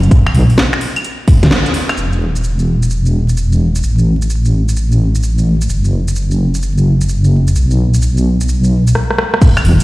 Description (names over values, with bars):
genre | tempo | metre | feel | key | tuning
UK garage, two-step garage | 129 BPM | 4/4 | swing 66% on 16ths | unclear | A4 = 440 Hz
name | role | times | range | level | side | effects
deep soft wobble bass | bass | 0.0-9.8 s | E1 to D2 | -11 LUFS | equal | chorus
house drum kit | drums | 0.0-9.8 s | claves, crash cymbal, finger snaps, hi-hat, rim click, shaker, snare drum | -18 LUFS | equal | none
electronic kick drum | drums | 0.1-1.4, 9.4-9.5 s | none | -7 LUFS | equal | none
room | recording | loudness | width
light reverb | played on a big sound system in a bare room, large studio reverb, vinyl crackle | -11 LUFS | side -19 dB against mid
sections
0.0-2.0 A section; 2.0-9.4 B section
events
break 1.5-2.0; band accent 1.5; drum fill 8.9-9.4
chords
none